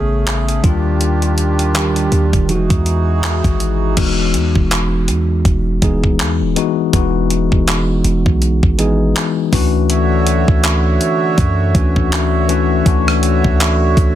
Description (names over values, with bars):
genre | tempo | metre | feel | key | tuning
contemporary R&B | 81 BPM | 4/4 | swing 58% on 16ths | unclear | A4 = 440 Hz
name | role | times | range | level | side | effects
tine electric piano | accompaniment | 0.0-14.2 s | C#3 to G#4 | -17 LUFS | moving between left 10 dB and right 3 dB | auto-pan
hand-pumped harmonium | sustained chords | 0.0-4.0, 9.9-14.2 s | D3 to E5 | -20 LUFS | right 3 dB | none
warm 808-style bass | bass | 0.0-14.2 s | D#1 to F#2 | -17 LUFS | equal | none
clean 12-bit digital drum machine | drums | 0.3-14.2 s | crash cymbal, handclaps, hi-hat, kick drum, rim click | -17 LUFS | equal | none
room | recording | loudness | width
little or no reverb | dense, heavily limited modern master | -12 LUFS | side -12 dB against mid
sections
0.0-4.0 A section; 4.0-14.2 B section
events
none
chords
0.0 Amaj9; 0.6 Ebmaj9; 2.5 Emaj9; 9.5 Dmaj9